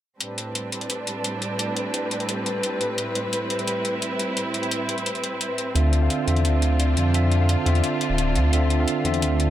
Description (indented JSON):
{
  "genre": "liquid drum and bass",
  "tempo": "173 BPM",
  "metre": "4/4",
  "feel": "straight",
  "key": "A minor",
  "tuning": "A4 = 440 Hz",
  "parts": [
    { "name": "warm symphonic string section", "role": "sustained chords", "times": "0.2-9.5 s", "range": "A2 to B4", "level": "-26 LUFS", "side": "equal", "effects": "none" },
    { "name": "electronic hi-hat", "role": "drums", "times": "0.2-9.5 s", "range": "none", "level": "-29 LUFS", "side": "left 1 dB", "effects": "none" },
    { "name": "bright tine electric piano", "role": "accompaniment", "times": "5.7-9.5 s", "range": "D3 to F5", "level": "-24 LUFS", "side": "equal", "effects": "slow stereo tremolo, tape echo" },
    { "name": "dark detuned saw bass", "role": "bass", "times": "5.8-9.5 s", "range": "D1 to F2", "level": "-20 LUFS", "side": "equal", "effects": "none" }
  ],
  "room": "light reverb, digital ambience",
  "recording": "none",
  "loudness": "-21 LUFS",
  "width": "side -12 dB against mid",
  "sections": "0.2-9.5 A section",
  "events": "none",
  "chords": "0.2 Am11; 5.8 Dm9",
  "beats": "| 0.21 0.55 0.90 1.25 | 1.59 1.94 2.29 2.63 | 2.98 3.33 3.67 4.02 | 4.37 4.71 5.06 5.41 | 5.76 6.10 6.45 6.80 | 7.14 7.49 7.84 8.18 | 8.53 8.88 9.22"
}